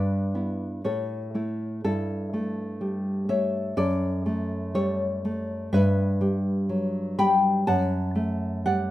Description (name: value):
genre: romantic piece for solo classical guitar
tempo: 61 BPM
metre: 2/4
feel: rubato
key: D major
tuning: A4 = 440 Hz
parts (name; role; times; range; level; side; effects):
- nylon-string guitar; solo; 0.0-8.9 s; F#2 to B5; -24 LUFS; equal; none
room: light reverb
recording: rough home demo mix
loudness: -24 LUFS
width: side -14 dB against mid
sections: 0.0-8.9 A section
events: none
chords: 0.0 Em/G; 0.8 A; 1.8 A7/G; 3.8 D/F#; 5.7 Em/G; 7.7 D/F#